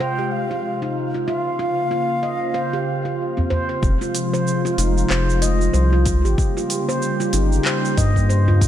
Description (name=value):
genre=organic downtempo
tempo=94 BPM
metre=4/4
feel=swing 58% on 16ths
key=F minor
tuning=A4 = 441 Hz
part: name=reedy bansuri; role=melody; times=0.0-3.5 s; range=F5 to G5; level=-26 LUFS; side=equal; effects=tape echo
part: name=warm analog pad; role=sustained chords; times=0.0-8.7 s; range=C3 to C5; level=-24 LUFS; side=equal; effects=chorus, sidechain pumping
part: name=handpan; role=arpeggios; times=0.0-8.6 s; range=C4 to Eb5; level=-24 LUFS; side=right 1 dB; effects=tape echo
part: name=wind-like tuned noise texture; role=texture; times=0.0-3.8 s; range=F5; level=-40 LUFS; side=equal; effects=built-in reverb
part: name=udu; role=percussion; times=3.4-3.7, 8.5-8.7 s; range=none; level=-23 LUFS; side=right 1 dB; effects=none
part: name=round analog bass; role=bass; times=3.8-8.7 s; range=F1 to G2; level=-17 LUFS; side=equal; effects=sidechain pumping
part: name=electronic kick drum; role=drums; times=3.8-8.7 s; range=none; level=-20 LUFS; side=equal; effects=studio reverb
part: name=organic electronic drum kit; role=drums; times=3.8-8.7 s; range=handclaps, hi-hat, shaker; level=-27 LUFS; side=right 1 dB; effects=studio reverb
room=light reverb, digital ambience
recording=none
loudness=-18 LUFS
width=side -11 dB against mid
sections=0.0-3.8 A section; 3.8-8.7 B section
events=none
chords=0.0 Fm; 1.3 Bbmadd9; 3.8 Fm; 6.4 Gdim